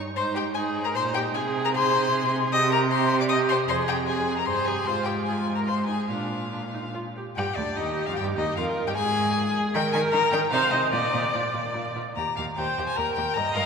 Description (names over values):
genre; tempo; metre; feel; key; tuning
quick classical-period movement for string quartet; 141-158 BPM; 3/4; rubato; Eb major; A4 = 440 Hz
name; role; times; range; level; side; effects
rich viola; accompaniment; 0.0-13.7 s; D4 to Eb5; -28 LUFS; right 2 dB; none
clear cello; bass; 0.0-13.6 s; D2 to Eb3; -29 LUFS; right 3 dB; none
rich violin; melody; 0.2-13.7 s; D5 to Eb6; -27 LUFS; left 6 dB; none
rich violin; second line; 0.2-13.6 s; D4 to Eb5; -30 LUFS; equal; none
room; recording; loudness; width
wet cathedral reverb, RT60 4.7 s; recorded in a church or concert hall; -22 LUFS; side -6 dB against mid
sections
0.0-7.4 A section; 7.4-13.7 B section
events
none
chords
0.2 Ab5; 1.4 Ab/C; 2.5 C5; 3.7 Fm; 4.9 Fm/Ab; 6.1 Bb; 7.4 Eb; 8.6 Bb5/F; 9.7 Eb5; 10.5 Cm; 10.9 Bb; 12.2 Eb